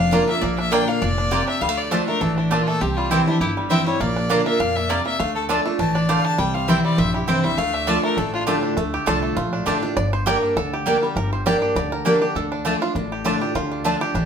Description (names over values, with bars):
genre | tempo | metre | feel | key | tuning
bluegrass | 201 BPM | 4/4 | swing 54% on 8ths | D minor | A4 = 439 Hz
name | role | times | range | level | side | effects
bluegrass banjo | melody | 0.0-14.3 s | G3 to D5 | -26 LUFS | right 2 dB | none
clear fiddle | melody | 0.0-8.4 s | D4 to A5 | -24 LUFS | left 3 dB | none
picked steel-string acoustic guitar | accompaniment | 0.0-14.3 s | F2 to G4 | -22 LUFS | equal | none
upright bass | bass | 0.0-14.3 s | F1 to F2 | -28 LUFS | equal | none
mandolin | stabs | 0.1-13.9 s | A3 to Bb5 | -25 LUFS | right 3 dB | none
room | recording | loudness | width
wet studio reverb, RT60 0.8 s | heard from further back in the room | -18 LUFS | side -7 dB against mid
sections
0.0-8.8 A section; 8.8-14.3 B section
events
five-string banjo solo 8.8-14.3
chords
0.0 Bb; 1.6 Dm; 2.8 C; 4.0 Bb; 5.2 Dm; 6.4 C; 7.6 Dm; 10.0 Gm; 12.4 Dm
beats
0.13 | 0.42 0.72 1.02 1.32 | 1.62 1.92 2.21 2.51 | 2.81 3.11 3.41 3.71 | 4.00 4.30 4.60 4.90 | 5.20 5.50 5.79 6.09 | 6.39 6.69 6.99 7.28 | 7.58 7.88 8.18 8.48 | 8.78 9.07 9.37 9.67 | 9.97 10.27 10.57 10.87 | 11.16 11.46 11.76 12.06 | 12.36 12.66 12.96 13.25 | 13.55 13.85 14.15